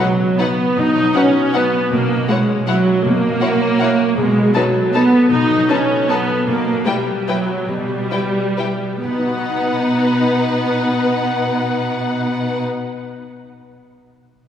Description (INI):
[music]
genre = classical, orchestral ballroom waltz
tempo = 121-172 BPM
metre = 3/4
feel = rubato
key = B major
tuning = A4 = 441 Hz
[part]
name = warm symphonic violin section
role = melody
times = 0.0-12.6 s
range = F#5 to A5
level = -26 LUFS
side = left 3 dB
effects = none
[part]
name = warm symphonic violin section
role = second line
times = 0.0-12.6 s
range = D#4 to C#5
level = -25 LUFS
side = left 2 dB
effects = none
[part]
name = warm symphonic viola section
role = accompaniment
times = 0.0-12.6 s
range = F#3 to D#4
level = -16 LUFS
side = right 1 dB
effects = none
[part]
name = concert harp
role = arpeggios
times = 0.0-13.1 s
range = B2 to D#5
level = -25 LUFS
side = left 4 dB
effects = none
[part]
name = warm symphonic cello section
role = bass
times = 0.8-12.6 s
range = B2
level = -25 LUFS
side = equal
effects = none
[sound]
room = wet church reverb, RT60 2.8 s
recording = recorded in a church or concert hall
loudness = -14 LUFS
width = side -9 dB against mid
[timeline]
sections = 0.0-9.0 A section; 9.0-11.9 B section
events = slowing down 5.9-9.0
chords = 0.0 B; 1.9 F#/B; 4.2 B7; 6.5 Em/B (rootless); 9.0 B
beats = 0.39 | 0.77 1.15 1.54 | 1.92 2.29 2.68 | 3.04 3.41 3.80 | 4.17 4.54 4.93 | 5.31 5.70 6.09 | 6.47 6.86 7.28 | 7.69 8.11 8.58 | 9.05 9.51 10.00 | 10.46 10.93 11.41